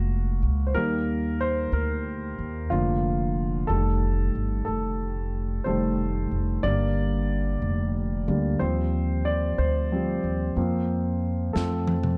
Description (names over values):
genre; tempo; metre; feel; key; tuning
six-eight pop ballad; 61 BPM (dotted quarters); 6/8; straight; unclear; A4 = 440 Hz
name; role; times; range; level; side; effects
warm concert grand piano; accompaniment; 0.0-12.2 s; D3 to D5; -29 LUFS; equal; none
upright bass; bass; 0.0-12.2 s; F1 to F2; -29 LUFS; equal; none
modern studio drum kit; drums; 11.6-12.2 s; snare drum, toms; -31 LUFS; equal; none
room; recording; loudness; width
studio reverb; dark, warm production; -26 LUFS; mono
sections
0.0-12.2 A section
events
grand piano solo 0.0-12.2; drum fill 11.5-12.2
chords
0.0 Gbmaj7; 0.7 Eb; 2.7 Bb/F; 3.7 F7; 6.6 Gm; 8.6 Eb6; 10.6 Fsus4; 11.5 F